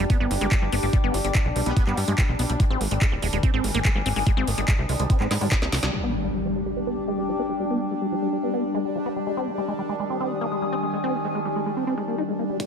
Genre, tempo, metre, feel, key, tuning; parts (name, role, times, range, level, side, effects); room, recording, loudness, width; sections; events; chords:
psychedelic trance; 144 BPM; 4/4; straight; A4 = 439 Hz
bubbling stepped-filter texture; sustained chords; 0.0-12.7 s; G3 to D4; -29 LUFS; left 2 dB; chorus, built-in reverb, sidechain pumping
liquid acid bass; riff; 0.0-12.7 s; F3 to G4; -29 LUFS; moving between left 5 dB and right 5 dB; phaser, auto-pan, sidechain pumping, digital delay
plucky analog bass; bass; 0.0-5.9 s; Eb1 to Ab2; -26 LUFS; equal; tube saturation
garage drum kit; drums; 0.0-5.9, 12.6-12.7 s; handclaps, hi-hat, snare drum; -29 LUFS; right 1 dB; overdrive, high-pass filter on hats, small room reverb, high-pass filter on snare
warbly tape-like pad; texture; 0.0-12.7 s; Eb3 to Eb6; -31 LUFS; left 1 dB; chorus, built-in reverb, sidechain pumping
electronic kick drum; drums; 0.1-5.6, 12.6-12.7 s; -21 LUFS; equal; overdrive, high-pass filter on kick, small room reverb
metallic wobble bass; second line; 1.7-1.8 s; B3; -38 LUFS; left 4 dB; distortion, lush chorus, sidechain pumping, high-pass filter, ping-pong delay
impact; sound effects; 5.9-7.6 s; -33 LUFS; equal
light reverb, digital ambience; -22 LUFS; side -7 dB against mid
0.0-5.9 A section; 5.9-12.6 B section
drum fill 5.3-5.9; band accent 5.8; impact 5.9-7.6; filter sweep on acid bass 5.9-12.6; filter sweep on synth texture 5.9-12.6
0.0 G5; 2.6 Ab5; 5.9 G5; 9.3 Ab5